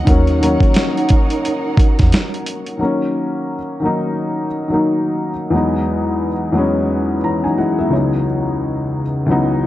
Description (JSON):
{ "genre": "lo-fi hip hop", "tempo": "88 BPM", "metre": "4/4", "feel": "swing 60% on 16ths", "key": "unclear", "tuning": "A4 = 440 Hz", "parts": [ { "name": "dark upright piano", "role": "accompaniment", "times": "0.0-9.7 s", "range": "C#2 to A#5", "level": "-16 LUFS", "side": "left 1 dB", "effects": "cassette tape" }, { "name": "dark studio string section", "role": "sustained chords", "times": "0.0-2.8 s", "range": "D#4 to F#5", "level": "-23 LUFS", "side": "right 4 dB", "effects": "none" }, { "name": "upright bass", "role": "bass", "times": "0.0-2.1 s", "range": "D#2 to E2", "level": "-16 LUFS", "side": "equal", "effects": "none" }, { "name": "dusty soul sampler-style drum kit", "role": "drums", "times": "0.1-2.8 s", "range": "hi-hat, kick drum, snare drum", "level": "-14 LUFS", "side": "equal", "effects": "overdrive, vintage 12-bit sampler grit" } ], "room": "light reverb, small room reverb", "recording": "dark, warm production", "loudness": "-15 LUFS", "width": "side -14 dB against mid", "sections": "0.0-2.8 A section; 2.8-9.7 B section", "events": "upright piano fill 6.9-8.3", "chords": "0.1 D#m7; 5.5 Emaj7; 7.9 C#m11", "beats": "| 0.07 0.76 1.44 2.12 | 2.80 3.48 4.16 4.85 | 5.53 6.21 6.89 7.57 | 8.26 8.94 9.62" }